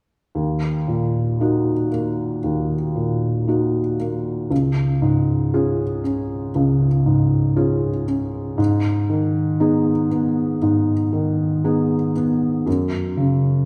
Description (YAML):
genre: neoclassical minimalist piano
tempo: 59 BPM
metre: 4/4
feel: rubato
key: Eb minor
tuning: A4 = 436 Hz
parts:
  - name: felt-muted upright piano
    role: solo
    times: 0.3-13.7 s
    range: Db2 to Ab4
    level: -20 LUFS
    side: equal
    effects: none
room: wet recital hall reverb, RT60 1.6 s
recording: recorded in a church or concert hall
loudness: -20 LUFS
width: mono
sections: 0.4-13.7 A section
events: none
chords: 0.4 Ebm; 4.5 Db; 8.6 Abm; 12.7 Gb5